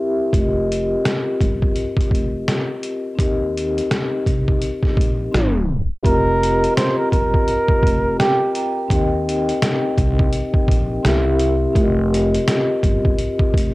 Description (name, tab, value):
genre	lo-fi hip hop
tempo	84 BPM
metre	4/4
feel	swing 62% on 16ths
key	unclear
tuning	A4 = 440 Hz
part	vibraphone with soft mallets	accompaniment	0.0-13.7 s	C4 to Bb5	-21 LUFS	left 1 dB	cassette tape, low-pass filter
part	upright bass	bass	0.3-13.7 s	F1 to Eb2	-22 LUFS	equal	none
part	trip hop sampler-style drum kit	drums	0.3-13.7 s	hi-hat, kick drum, snare drum	-19 LUFS	equal	cassette tape
part	breathy flugelhorn	melody	6.1-8.5 s	G4 to C5	-19 LUFS	right 1 dB	low-pass filter, cassette tape
room	light reverb, small room ambience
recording	home recording on cassette, tape stop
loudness	-16 LUFS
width	side -20 dB against mid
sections	0.0-6.0 A section; 6.0-13.7 B section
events	tape stop 5.3-6.0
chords	0.3 F9sus4; 3.2 Cm7/Eb; 5.3 C7; 6.0 F9sus4; 8.9 Cm7/Eb; 11.0 C7; 11.8 F9sus4